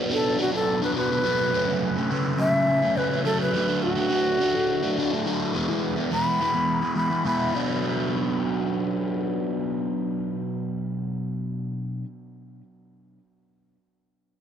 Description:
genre	rock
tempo	210 BPM (eighths)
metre	7/8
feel	straight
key	B dorian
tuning	A4 = 441 Hz
part	crunchy overdriven guitar	riff	0.0-12.1 s	F#2 to E4	-24 LUFS	equal	phaser, analog delay
part	mellow shakuhachi	melody	0.1-7.5 s	F#4 to B5	-26 LUFS	equal	analog delay
room	light reverb, small room ambience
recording	echo-heavy mix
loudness	-22 LUFS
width	side -9 dB against mid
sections	0.0-7.5 A section; 7.5-11.5 B section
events	shakuhachi solo 0.0-7.5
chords	0.0 Bm; 1.5 F#m; 3.5 D; 5.5 E; 7.5 Bm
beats	0.12 0.40 0.69 0.97 1.26 | 1.54 1.83 2.11 2.40 2.68 2.97 3.25 | 3.54 3.83 4.11 4.40 4.68 4.97 5.25 | 5.54 5.83 6.11 6.40 6.68 6.97 7.25 | 7.54 7.83 8.11 8.40 8.68 8.97 9.25 | 9.54 9.82 10.11 10.40 10.68 10.97 11.25

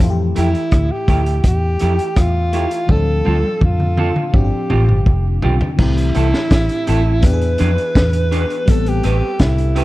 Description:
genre	lovers rock reggae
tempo	83 BPM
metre	4/4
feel	straight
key	C major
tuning	A4 = 441 Hz
part	FM electric piano	accompaniment	0.0-9.8 s	E3 to E5	-26 LUFS	left 3 dB	chorus, phaser
part	vintage muted fingered electric bass	bass	0.0-9.8 s	F1 to F2	-16 LUFS	equal	none
part	crunchy breakbeat drum kit	drums	0.0-9.8 s	crash cymbal, hi-hat, kick drum, rim click, snare drum, toms	-17 LUFS	equal	none
part	breathy alto saxophone	melody	0.4-9.8 s	E4 to B4	-21 LUFS	equal	tape echo
part	electric guitar through a small old amp	stabs	0.4-9.8 s	A3 to B4	-25 LUFS	right 4 dB	slapback echo
room	studio reverb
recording	dark, warm production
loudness	-13 LUFS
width	side -17 dB against mid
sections	0.0-5.8 A section; 5.8-9.8 B section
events	drum fill 2.9-5.8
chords	0.0 Fmaj9; 2.9 Dm7; 4.3 G7sus4; 5.8 C6; 7.2 E7; 8.7 Am9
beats	| 0.00 0.72 1.45 2.17 | 2.89 3.62 4.34 5.06 | 5.79 6.51 7.23 7.95 | 8.68 9.40

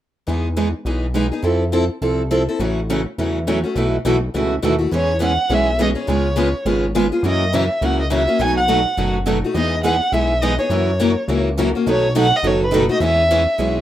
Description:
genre	acoustic string swing (jazz manouche)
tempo	207 BPM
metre	4/4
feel	swing 59% on 8ths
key	E major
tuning	A4 = 440 Hz
part	picked steel-string acoustic guitar	accompaniment	0.3-13.8 s	B2 to A4	-21 LUFS	left 4 dB	none
part	picked steel-string acoustic guitar	accompaniment	0.3-13.8 s	B2 to C#5	-22 LUFS	right 6 dB	none
part	fat analog bass	bass	0.3-13.8 s	F#1 to F#2	-21 LUFS	equal	none
part	warm violin	melody	5.0-13.8 s	B4 to G#5	-19 LUFS	right 1 dB	none
room	moderate small room reverb, RT60 0.6 s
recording	rough home demo mix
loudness	-16 LUFS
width	side -12 dB against mid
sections	0.3-4.9 A section; 4.9-13.8 B section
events	none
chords	0.3 Emaj7; 1.4 Fmaj7; 2.6 A6; 3.8 B9sus4; 4.9 E69; 6.1 C#7; 7.2 F#7; 8.4 B7; 9.6 Emaj7; 10.7 F#7; 11.9 B9; 13.0 E6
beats	| 0.28 0.57 0.86 1.15 | 1.44 1.73 2.02 2.31 | 2.60 2.89 3.18 3.47 | 3.76 4.05 4.34 4.63 | 4.92 5.21 5.50 5.79 | 6.08 6.37 6.66 6.95 | 7.24 7.53 7.82 8.11 | 8.39 8.68 8.97 9.26 | 9.55 9.84 10.13 10.42 | 10.71 11.00 11.29 11.58 | 11.87 12.15 12.44 12.73 | 13.02 13.31 13.60

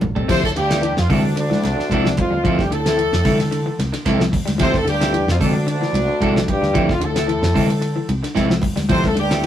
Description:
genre	afrobeat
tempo	112 BPM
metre	4/4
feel	swing 53% on 16ths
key	D minor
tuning	A4 = 440 Hz
part	semi-hollow electric guitar	arpeggios	0.0-9.5 s	C3 to G3	-26 LUFS	left 3 dB	none
part	clean electric guitar	stabs	0.0-9.5 s	F3 to A4	-24 LUFS	right 2 dB	none
part	hollow-body short-scale fingered electric bass	bass	0.0-9.5 s	A1 to D3	-23 LUFS	equal	none
part	damped 70s drum kit	drums	0.0-9.5 s	crash cymbal, hi-hat, kick drum, ride cymbal, snare drum, toms	-24 LUFS	equal	none
part	congas	percussion	0.0-9.2 s	none	-23 LUFS	left 1 dB	none
part	bright horn section	melody	0.3-9.5 s	D4 to C5	-24 LUFS	left 2 dB	none
part	clear trombone section	second line	0.3-9.5 s	D2 to C3	-25 LUFS	left 1 dB	none
part	clear trumpet	second line	0.3-9.5 s	D4 to C5	-29 LUFS	right 3 dB	none
room	wet studio reverb, RT60 0.5 s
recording	rough rehearsal-room recording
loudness	-16 LUFS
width	side -10 dB against mid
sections	0.3-9.5 A section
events	drum fill 0.0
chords	0.3 Dm9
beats	| 0.28 0.82 1.36 1.90 | 2.44 2.98 3.52 4.05 | 4.59 5.13 5.67 6.21 | 6.75 7.28 7.82 8.36 | 8.90 9.44

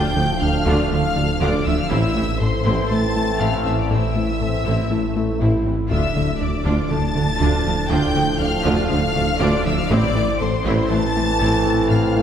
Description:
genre	cinematic, hybrid orchestral and electronic film score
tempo	120 BPM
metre	4/4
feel	straight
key	D minor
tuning	A4 = 440 Hz
part	warm symphonic violin section	melody	0.0-12.2 s	C6 to A6	-28 LUFS	left 4 dB	none
part	warm symphonic violin section	second line	0.0-12.2 s	C5 to A5	-26 LUFS	left 2 dB	none
part	rich symphonic viola section	accompaniment	0.0-12.2 s	E3 to F4	-29 LUFS	right 1 dB	none
part	dark trombone section	sustained chords	0.0-12.2 s	A2 to F3	-27 LUFS	right 2 dB	none
part	warm French horn section	sustained chords	0.0-12.2 s	A3 to E4	-28 LUFS	equal	none
part	soft round pluck	arpeggios	0.0-12.2 s	D3 to A4	-28 LUFS	right 3 dB	chorus, digital delay
part	rubbery square bass	riff	0.0-12.2 s	D2 to A3	-24 LUFS	left 2 dB	none
part	detuned saw bass	bass	0.0-12.2 s	D1 to A1	-28 LUFS	equal	none
part	dark symphonic cello section	bass	0.2-12.2 s	A2 to D3	-29 LUFS	right 2 dB	none
part	mellow tuba	bass	0.2-12.2 s	A1 to D2	-27 LUFS	right 2 dB	none
part	rich symphonic double bass section	bass	0.2-12.2 s	A1 to D2	-27 LUFS	right 2 dB	none
room	wet scoring stage reverb, RT60 1.9 s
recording	heard from further back in the room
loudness	-17 LUFS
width	side -9 dB against mid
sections	0.0-12.2 A section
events	none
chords	0.0 Dm; 1.9 Am; 5.9 Dm; 9.9 Am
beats	0.41 0.91 1.41 | 1.91 2.41 2.91 3.41 | 3.91 4.41 4.91 5.41 | 5.91 6.41 6.91 7.41 | 7.91 8.41 8.91 9.41 | 9.91 10.41 10.91 11.41 | 11.91

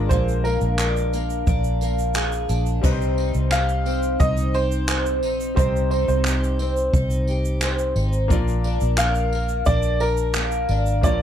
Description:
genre	acoustic pop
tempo	88 BPM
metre	4/4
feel	straight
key	C minor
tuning	A4 = 440 Hz
part	clear upright piano	melody	0.0-11.2 s	Bb4 to F5	-26 LUFS	right 2 dB	none
part	bright concert grand piano	accompaniment	0.0-11.2 s	G3 to D5	-34 LUFS	left 6 dB	none
part	picked twelve-string acoustic guitar	accompaniment	0.0-11.2 s	Bb2 to Bb4	-25 LUFS	left 1 dB	double-tracked left and right
part	vintage muted fingered electric bass	bass	0.0-11.2 s	Ab1 to C2	-22 LUFS	equal	none
part	jazz brush drum kit	drums	0.1-11.2 s	crash cymbal, handclaps, kick drum, tambourine	-24 LUFS	equal	none
part	egg shaker	percussion	0.1-11.2 s	none	-39 LUFS	right 14 dB	none
room	little or no reverb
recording	none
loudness	-19 LUFS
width	side -9 dB against mid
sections	0.0-2.8 A section; 2.8-11.2 B section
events	none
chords	0.0 Bb7; 2.8 Cm; 8.3 Bb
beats	| 0.11 0.79 1.47 2.16 | 2.84 3.52 4.20 4.89 | 5.57 6.25 6.94 7.62 | 8.30 8.99 9.67 10.35 | 11.04

